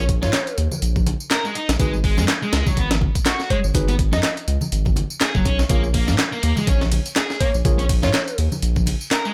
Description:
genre	breakbeat, breaks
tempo	123 BPM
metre	4/4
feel	swing 57% on 16ths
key	unclear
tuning	A4 = 439 Hz
part	sludgy distorted guitar	riff	0.0-9.3 s	F#3 to A#4	-28 LUFS	equal	overdrive, tube saturation, vintage 12-bit sampler grit, digital delay
part	mellow tine electric piano	stabs	0.0-7.8 s	D#4 to C#5	-31 LUFS	equal	overdrive, digital delay
part	saturated sub bass	bass	0.0-8.9 s	F#1 to A#2	-23 LUFS	equal	tube saturation
part	breakbeat sampler-style drum kit	drums	0.1-9.2 s	hi-hat, kick drum, snare drum	-24 LUFS	equal	studio reverb
part	soft struck synth lead	melody	0.2-0.6, 3.5-4.3, 7.4-8.4 s	C#5 to D#5	-30 LUFS	equal	chorus, small speaker sound, digital delay
part	house drum kit	drums	0.2-9.3 s	handclaps, ride cymbal, tambourine	-30 LUFS	equal	studio reverb
part	congas	percussion	0.2-9.0 s	none	-31 LUFS	equal	none
room	little or no reverb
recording	none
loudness	-20 LUFS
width	mono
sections	0.0-9.3 A section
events	none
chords	0.0 A#m; 1.8 G#m7; 5.7 A#m7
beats	0.33 0.82 1.31 | 1.80 2.28 2.77 3.26 | 3.75 4.24 4.72 5.21 | 5.70 6.19 6.67 7.16 | 7.65 8.14 8.63 9.11

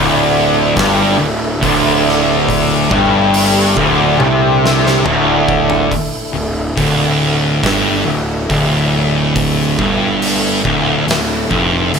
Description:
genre	stoner and doom metal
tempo	70 BPM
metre	4/4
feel	straight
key	unclear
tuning	A4 = 440 Hz
part	overdriven tonewheel organ	sustained chords	0.0-12.0 s	D3 to E4	-25 LUFS	left 1 dB	none
part	fuzz guitar	riff	0.0-5.9 s	D2 to C3	-14 LUFS	equal	distortion
part	thick fuzz guitar	riff	0.0-12.0 s	D2 to C3	-18 LUFS	left 10 dB	distortion
part	thick fuzz guitar	riff	0.0-12.0 s	D2 to C3	-17 LUFS	right 9 dB	distortion
part	fuzz picked electric bass	bass	0.0-12.0 s	D1 to C2	-19 LUFS	equal	overdrive
part	oversized low-tuned drum kit	drums	0.8-12.0 s	hi-hat, kick drum, snare drum, toms	-20 LUFS	equal	none
room	light reverb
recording	none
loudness	-11 LUFS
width	side -6 dB against mid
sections	0.0-5.9 A section; 5.9-12.0 B section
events	drum fill 4.2-5.9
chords	0.0 D5; 5.9 Dm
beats	0.77 1.63 | 2.49 3.35 4.20 5.06 | 5.92 6.78 7.64 8.49 | 9.35 10.21 11.07 11.93

